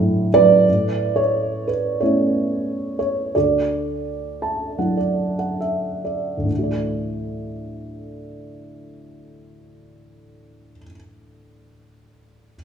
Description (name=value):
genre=classical, lyrical solo piano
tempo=64-93 BPM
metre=4/4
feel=rubato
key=D major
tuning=A4 = 440 Hz
part: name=felt-muted upright piano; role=solo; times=0.0-12.6 s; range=D2 to A5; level=-18 LUFS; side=right 2 dB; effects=none
room=wet recital hall reverb, RT60 1.5 s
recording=small room ambience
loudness=-18 LUFS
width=side -7 dB against mid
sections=0.7-6.5 A section; 6.5-10.0 B section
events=slowing down 0.7-6.5; felt piano fill 4.1-6.5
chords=0.0 D; 0.7 Aadd9; 3.4 Dadd9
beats=| 0.68 1.35 2.00 2.66 | 3.35 4.06 4.80 5.61 | 6.51 7.42 8.29 9.15